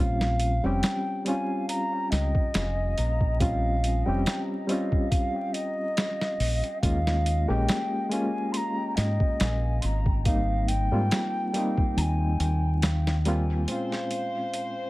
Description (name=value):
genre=trip hop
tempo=70 BPM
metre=4/4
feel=swing 54% on 16ths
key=Bb dorian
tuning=A4 = 438 Hz
part: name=wooden flute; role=melody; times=0.0-14.9 s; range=Eb5 to C6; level=-31 LUFS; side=equal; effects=vintage 12-bit sampler grit, tape echo
part: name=barky reed electric piano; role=accompaniment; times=0.0-14.9 s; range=Bb2 to G4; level=-30 LUFS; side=equal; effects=overdrive, fast tremolo, vintage 12-bit sampler grit, tape echo
part: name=deep dub fingered electric bass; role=bass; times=0.0-13.6 s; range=F1 to Ab2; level=-25 LUFS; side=equal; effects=none
part: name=boom bap sampler-style drum kit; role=drums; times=0.2-14.8 s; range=hi-hat, kick drum, snare drum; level=-28 LUFS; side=equal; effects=high-pass filter on hats, high-pass filter on kick, high-pass filter on snare
part: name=rich chamber string section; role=sustained chords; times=13.7-14.9 s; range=C5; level=-36 LUFS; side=left 3 dB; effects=low-pass filter
room=digital ambience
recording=echo-heavy mix, vinyl crackle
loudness=-24 LUFS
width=side -19 dB against mid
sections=0.0-13.7 A section; 13.7-14.9 B section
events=kick drops out 12.0-13.7; filter sweep on string section 13.7-14.9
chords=0.0 Bbm69; 6.8 Eb9sus4; 10.3 Abmaj9; 13.7 Bbm9